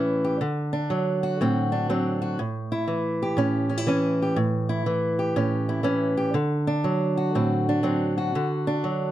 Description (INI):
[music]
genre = blues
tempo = 120 BPM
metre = 4/4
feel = swing 66% on 8ths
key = unclear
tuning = A4 = 441 Hz
[part]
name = fingerpicked old ladder-braced acoustic guitar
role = solo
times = 0.0-9.1 s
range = A2 to G4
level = -22 LUFS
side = right 1 dB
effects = none
[sound]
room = little or no reverb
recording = close, detailed microphones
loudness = -22 LUFS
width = side -13 dB against mid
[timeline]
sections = 0.0-9.1 A section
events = none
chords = 0.4 D7; 2.4 A7; 6.4 D7